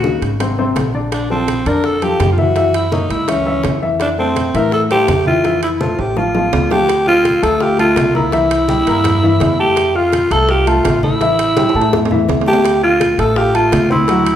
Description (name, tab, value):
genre	Afro-Cuban jazz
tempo	167 BPM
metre	4/4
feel	straight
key	F major, D minor from 6.9 s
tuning	A4 = 439 Hz
part	growling alto saxophone	melody	0.0-14.4 s	C4 to Bb4	-15 LUFS	equal	none
part	warm baby grand piano	accompaniment	0.0-14.4 s	C3 to F6	-18 LUFS	left 2 dB	none
part	upright bass	bass	0.0-14.4 s	Ab1 to A2	-20 LUFS	equal	none
part	bongos	percussion	0.0-14.4 s	none	-26 LUFS	left 3 dB	none
part	congas	percussion	0.0-14.4 s	none	-24 LUFS	equal	none
part	timbales	percussion	0.0-14.4 s	none	-24 LUFS	right 5 dB	none
room	wet large studio reverb, RT60 1.1 s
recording	band playing live in one room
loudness	-12 LUFS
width	side -10 dB against mid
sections	0.0-6.9 A section; 6.9-14.4 B section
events	drum fill 5.8-6.9, 11.6-12.6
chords	0.4 Abadd9; 1.1 Bbmaj7; 2.6 Gb7; 4.0 Fmaj7; 6.2 Dmadd11/A; 6.9 Dm7; 8.3 C6; 9.8 F; 11.2 A5; 12.6 Dm7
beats	0.04 0.40 0.76 | 1.12 1.48 1.84 2.20 | 2.56 2.92 3.28 3.64 | 4.00 4.36 4.72 5.08 | 5.44 5.80 6.17 6.53 | 6.89 7.25 7.61 7.97 | 8.33 8.69 9.05 9.41 | 9.77 10.13 10.49 10.85 | 11.21 11.57 11.93 12.29 | 12.64 13.01 13.37 13.72 | 14.08